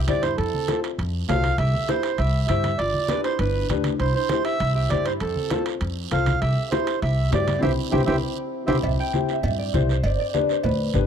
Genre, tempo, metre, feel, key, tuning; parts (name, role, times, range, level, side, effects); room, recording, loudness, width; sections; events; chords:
latin, cumbia; 199 BPM; 4/4; straight; C major; A4 = 440 Hz
concert harp; second line; 0.0-11.1 s; C4 to G5; -30 LUFS; equal
accordion; melody; 0.1-8.8 s; G4 to F5; -26 LUFS; right 5 dB
dark upright piano; accompaniment; 0.1-11.1 s; D4 to C5; -29 LUFS; left 14 dB
upright bass; bass; 0.1-11.1 s; G1 to G2; -24 LUFS; equal
congas; percussion; 0.1-11.1 s; -28 LUFS; right 1 dB
guiro; percussion; 0.1-11.1 s; -38 LUFS; right 16 dB
timbales and cowbell; percussion; 0.1-10.8 s; -32 LUFS; right 4 dB
small room ambience; dry, close 1970s-style studio recording; -20 LUFS; side -8 dB against mid
0.0-8.8 A section; 8.8-11.1 B section
band accent 7.6-8.8; drum fill 8.1-8.8; harp solo 8.8-11.1
0.4 F; 1.6 C; 2.8 G7; 4.0 C; 5.2 F; 6.4 C; 10.0 G